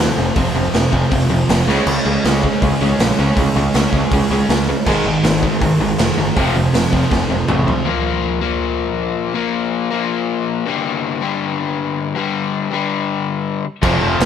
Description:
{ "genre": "punk rock", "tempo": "160 BPM", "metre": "4/4", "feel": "straight", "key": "Bb major from 7.9 s", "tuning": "A4 = 439 Hz", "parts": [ { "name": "cranked stack guitar", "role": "riff", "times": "0.0-7.9, 13.8-14.3 s", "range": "F2 to Db4", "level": "-22 LUFS", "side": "right 1 dB", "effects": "overdrive" }, { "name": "distorted electric guitar", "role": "riff", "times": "0.0-7.9, 13.8-14.3 s", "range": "F2 to Db4", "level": "-21 LUFS", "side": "right 7 dB", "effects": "distortion" }, { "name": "overdriven electric guitar", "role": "riff", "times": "0.0-14.3 s", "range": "F2 to Db4", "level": "-20 LUFS", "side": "left 6 dB", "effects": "none" }, { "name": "growling picked electric bass", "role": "bass", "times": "0.0-7.7, 13.8-14.3 s", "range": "F1 to Db2", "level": "-19 LUFS", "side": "equal", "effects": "overdrive" }, { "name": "raw garage drum kit", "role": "drums", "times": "0.0-7.8, 13.8-14.3 s", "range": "crash cymbal, hi-hat, kick drum, snare drum, toms", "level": "-19 LUFS", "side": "right 1 dB", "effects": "none" } ], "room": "light reverb", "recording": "band playing live in one room", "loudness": "-15 LUFS", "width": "side -8 dB against mid", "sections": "0.0-7.9 A section; 7.9-14.3 B section", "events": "drum fill 1.7, 7.1-7.9", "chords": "0.0 F5; 1.7 Db5; 4.9 Ab5; 6.4 F; 7.9 Bb5; 10.7 G5", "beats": "| 0.37 0.74 1.12 1.50 | 1.87 2.25 2.62 3.00 | 3.37 3.75 4.12 4.50 | 4.87 5.25 5.62 6.00 | 6.37 6.75 7.12 7.49 | 7.87 8.24 8.62 8.99 | 9.36 9.73 10.11 10.48 | 10.85 11.23 11.60 11.97 | 12.34 12.72 13.09 13.46 | 13.84 14.21" }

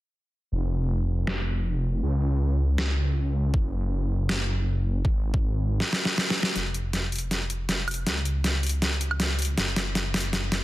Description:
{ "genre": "future bass", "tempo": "159 BPM", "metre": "4/4", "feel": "swing 54% on 16ths, half-time", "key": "Db major", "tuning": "A4 = 440 Hz", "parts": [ { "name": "wide detuned saw bass", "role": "bass", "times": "0.5-10.6 s", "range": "F1 to Db2", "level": "-25 LUFS", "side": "equal", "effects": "chorus, sidechain pumping" }, { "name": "dubstep drum kit", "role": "drums", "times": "1.3-10.6 s", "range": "finger snaps, hi-hat, snare drum, woodblock", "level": "-26 LUFS", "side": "equal", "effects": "overdrive, low-pass filter on snare, low-pass filter on hats, low-pass filter on perc" }, { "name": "electronic kick drum", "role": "drums", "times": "3.5-5.4 s", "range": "none", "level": "-24 LUFS", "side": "equal", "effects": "overdrive" } ], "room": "light reverb, digital ambience", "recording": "dense, heavily limited modern master", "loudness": "-24 LUFS", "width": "side -17 dB against mid", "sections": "0.5-6.6 A section; 6.6-10.6 B section", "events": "drum fill 5.8-6.6, 6.6-10.6; build-up 6.6-10.6", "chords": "none", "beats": "| 0.52 0.90 1.27 1.65 | 2.03 2.41 2.78 3.16 | 3.54 3.92 4.29 4.67 | 5.05 5.42 5.80 6.18 | 6.56 6.93 7.31 7.69 | 8.07 8.44 8.82 9.20 | 9.58 9.95 10.33" }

